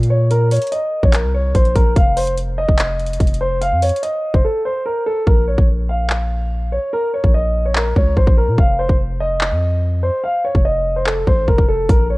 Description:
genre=hip hop, trap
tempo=145 BPM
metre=4/4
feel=half-time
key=Bb minor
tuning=A4 = 439 Hz
part: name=dark concert grand piano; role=melody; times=0.0-12.2 s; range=A4 to F5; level=-19 LUFS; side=equal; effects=low-pass filter, cassette tape
part: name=long sustained 808-style bass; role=bass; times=0.0-12.2 s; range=F1 to Bb2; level=-18 LUFS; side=equal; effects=none
part: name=trap drum kit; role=drums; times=0.0-12.0 s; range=handclaps, hi-hat, kick drum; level=-15 LUFS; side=equal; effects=cassette tape
room=little or no reverb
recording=home recording on cassette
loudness=-14 LUFS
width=side -21 dB against mid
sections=0.0-5.3 A section; 5.3-12.2 B section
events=break 4.4-5.3; hi-hats muted 5.3-11.9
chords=0.0 Bb5; 2.0 F7(no3); 5.3 Bbm; 8.6 F7(no3)

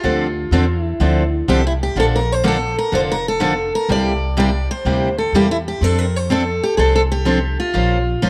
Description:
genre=acoustic string swing (jazz manouche)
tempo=124 BPM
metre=4/4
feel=swing 65% on 8ths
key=F major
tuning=A4 = 445 Hz
part: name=picked steel-string acoustic guitar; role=melody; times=0.0-8.3 s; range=E4 to D5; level=-22 LUFS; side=equal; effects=none
part: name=picked steel-string acoustic guitar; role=accompaniment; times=0.0-8.3 s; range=C3 to C5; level=-22 LUFS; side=equal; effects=none
part: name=upright bass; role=bass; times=0.0-8.3 s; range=F1 to F2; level=-22 LUFS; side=equal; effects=none
room=moderate spring reverb, RT60 1.6 s, studio ambience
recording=none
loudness=-18 LUFS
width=mono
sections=0.0-8.3 A section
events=none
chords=0.0 Dm9; 2.0 Bbmaj7; 3.9 C7; 5.8 F6; 7.7 Bbmadd9

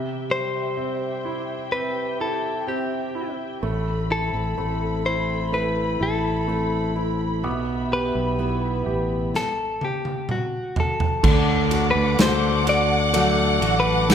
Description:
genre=pop ballad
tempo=63 BPM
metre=4/4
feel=straight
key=unclear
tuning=A4 = 439 Hz
part: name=clear concert grand piano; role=accompaniment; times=0.0-14.1 s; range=C3 to G4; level=-28 LUFS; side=right 4 dB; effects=none
part: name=dark studio string section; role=sustained chords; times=0.0-14.1 s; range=C4 to D6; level=-30 LUFS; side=left 2 dB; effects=none
part: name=direct-recorded clean electric guitar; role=melody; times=0.3-14.1 s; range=F#4 to D5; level=-25 LUFS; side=left 2 dB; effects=none
part: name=fingerpicked steel-string acoustic guitar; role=arpeggios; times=3.6-14.1 s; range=A2 to B4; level=-30 LUFS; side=left 4 dB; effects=none
part: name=fingered electric bass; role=bass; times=3.6-14.1 s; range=A1 to D2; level=-25 LUFS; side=left 1 dB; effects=none
part: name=modern studio drum kit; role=drums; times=9.3-14.1 s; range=crash cymbal, kick drum, ride cymbal, snare drum, toms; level=-24 LUFS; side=right 1 dB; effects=none
part: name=warm studio violin section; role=second line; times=11.3-14.1 s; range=F#5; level=-26 LUFS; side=right 1 dB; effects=none
room=moderate concert hall reverb, RT60 2.2 s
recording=recorded in a church or concert hall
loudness=-20 LUFS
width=side -8 dB against mid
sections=0.0-11.2 A section; 11.2-14.1 B section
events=drum fill 9.3-11.2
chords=0.0 C; 3.6 Amadd9; 7.4 Em/B; 9.3 N.C.; 11.2 D

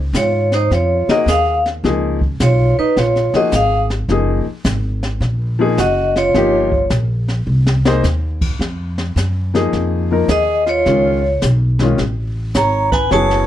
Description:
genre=jazz, small-group swing and bop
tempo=106 BPM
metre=4/4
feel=swing 67% on 8ths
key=Db major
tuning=A4 = 440 Hz
part: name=upright bass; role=bass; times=0.0-13.5 s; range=Gb1 to Ab2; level=-18 LUFS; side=equal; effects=none
part: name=jazz brush drum kit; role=drums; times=0.1-13.5 s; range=brushed snare drum, crash cymbal, hi-hat, kick drum, snare drum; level=-22 LUFS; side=equal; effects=none
part: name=vibraphone with medium hard mallets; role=melody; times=0.2-6.9, 10.3-13.5 s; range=Cb5 to Bb5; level=-16 LUFS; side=left 1 dB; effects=none
part: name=mellow alto saxophone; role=second line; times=0.2-6.9, 10.3-13.5 s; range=Eb4 to Db5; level=-20 LUFS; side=right 7 dB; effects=none
part: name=warm baby grand piano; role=accompaniment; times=1.1-13.5 s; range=Eb3 to C5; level=-17 LUFS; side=left 4 dB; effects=none
room=light reverb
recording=dark, warm production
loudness=-14 LUFS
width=side -12 dB against mid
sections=0.0-13.5 A section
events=drum fill 7.5-8.0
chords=0.0 Db6; 1.8 Db13; 4.1 Gb69; 6.3 Gm7b5; 7.5 Cm7; 8.6 Fm7; 10.9 Db7b13

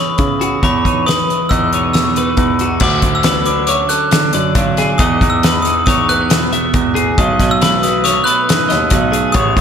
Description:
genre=math rock and midwest emo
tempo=138 BPM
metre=5/4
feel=straight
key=E major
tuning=A4 = 443 Hz
part: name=glockenspiel with brass mallets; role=melody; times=0.0-9.6 s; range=B5 to F#6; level=-17 LUFS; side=left 1 dB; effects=slapback echo, analog delay
part: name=twelve-string electric guitar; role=accompaniment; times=0.0-9.6 s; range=E2 to G#4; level=-20 LUFS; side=right 7 dB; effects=slapback echo
part: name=twelve-string electric guitar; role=arpeggios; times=0.0-9.6 s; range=F#4 to E5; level=-19 LUFS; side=left 4 dB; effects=lush chorus, slapback echo, analog delay
part: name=warm baby grand piano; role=bass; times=0.2-9.6 s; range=A1 to C#3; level=-18 LUFS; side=right 1 dB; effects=none
part: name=loose indie drum kit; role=drums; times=0.2-9.6 s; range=crash cymbal, hi-hat, kick drum, snare drum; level=-16 LUFS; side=left 1 dB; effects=none
room=moderate lush hall reverb, RT60 1.7 s, small room reverb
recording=big arena sound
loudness=-11 LUFS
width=side -7 dB against mid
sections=0.0-2.8 A section; 2.8-9.6 B section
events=none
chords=0.0 E69; 0.6 Emaj7; 2.8 Dmaj7; 5.0 Emaj7; 7.2 B7

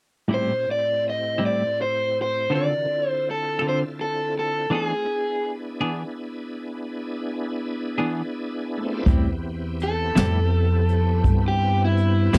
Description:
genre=slow blues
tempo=55 BPM (dotted quarters)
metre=12/8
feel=straight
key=A minor from 9.1 s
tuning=A4 = 440 Hz
part: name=raw garage guitar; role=melody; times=0.3-12.4 s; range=E4 to D#5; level=-26 LUFS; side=equal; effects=overdrive
part: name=semi-hollow electric guitar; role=accompaniment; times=0.3-12.4 s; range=A2 to A4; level=-26 LUFS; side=equal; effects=tremolo
part: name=bright tonewheel organ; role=sustained chords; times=0.3-12.4 s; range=A2 to D5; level=-33 LUFS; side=equal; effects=chorus vibrato, slow rotary speaker
part: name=upright bass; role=bass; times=9.1-12.4 s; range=E2 to A2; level=-23 LUFS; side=equal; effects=none
part: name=jazz brush drum kit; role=drums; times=9.1-12.4 s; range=hi-hat, kick drum, snare drum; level=-24 LUFS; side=equal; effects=none
room=little or no reverb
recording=dry, close 1970s-style studio recording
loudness=-24 LUFS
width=mono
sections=0.3-9.1 A section; 9.1-12.4 B section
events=overdriven electric guitar solo 9.1-12.4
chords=0.3 Am7; 2.5 Dm7; 4.7 E7; 9.1 Am7

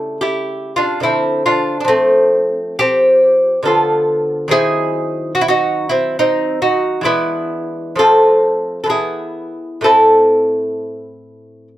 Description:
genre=classical, baroque-style dance for lute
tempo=62-73 BPM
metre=3/4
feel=rubato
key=A minor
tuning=A4 = 440 Hz
part: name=lute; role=solo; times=0.0-11.8 s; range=A2 to A4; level=-13 LUFS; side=equal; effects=none
room=light reverb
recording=none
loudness=-12 LUFS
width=side -14 dB against mid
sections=0.0-11.8 A section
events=none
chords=0.0 A7/C#; 1.0 Dm; 1.9 F; 3.7 Bm7b5/D; 4.5 G#7b13/D#; 7.1 E7; 8.0 F; 8.9 E; 9.8 Am

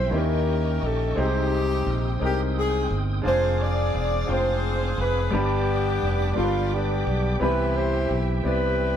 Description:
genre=gospel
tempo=58 BPM (dotted quarters)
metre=6/8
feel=straight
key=unclear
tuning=A4 = 442 Hz
part: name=warm saxophone section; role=melody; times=0.0-9.0 s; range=B3 to D5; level=-26 LUFS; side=left 1 dB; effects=none
part: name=clear grand piano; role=accompaniment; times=0.0-9.0 s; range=G2 to G5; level=-28 LUFS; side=left 1 dB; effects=none
part: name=bright tonewheel organ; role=sustained chords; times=0.0-9.0 s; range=C4 to Eb6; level=-33 LUFS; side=right 5 dB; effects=fast rotary speaker, chorus vibrato
part: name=modern bright fingered electric bass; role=bass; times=0.0-9.0 s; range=E1 to Eb2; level=-25 LUFS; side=equal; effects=none
room=light reverb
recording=band playing live in one room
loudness=-21 LUFS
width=side -9 dB against mid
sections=0.0-9.0 A section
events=none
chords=0.1 Eb7b9; 1.2 Abmaj7; 3.2 Fm6; 5.3 G; 7.4 Cmaj7

